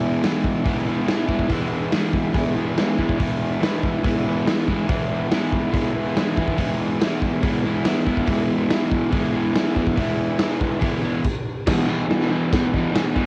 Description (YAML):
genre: garage rock duo or trio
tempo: 142 BPM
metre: 4/4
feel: straight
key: E major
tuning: A4 = 440 Hz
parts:
  - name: crunchy overdriven guitar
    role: riff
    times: 0.0-13.3 s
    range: E2 to E4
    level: -24 LUFS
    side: equal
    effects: cassette tape
  - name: raw garage drum kit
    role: drums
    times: 0.2-13.3 s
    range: crash cymbal, hi-hat, kick drum, snare drum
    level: -26 LUFS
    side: equal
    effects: cassette tape
room: light reverb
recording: home recording on cassette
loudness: -22 LUFS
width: mono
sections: 0.0-11.7 A section; 11.7-13.3 B section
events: stop 11.3-11.7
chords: 0.0 E; 11.7 E5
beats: 0.23 0.65 1.08 | 1.50 1.92 2.35 2.77 | 3.19 3.62 4.04 4.46 | 4.89 5.31 5.74 6.16 | 6.58 7.01 7.43 7.86 | 8.28 8.71 9.13 9.56 | 9.98 10.41 10.83 11.26 | 11.68 12.10 12.53 12.95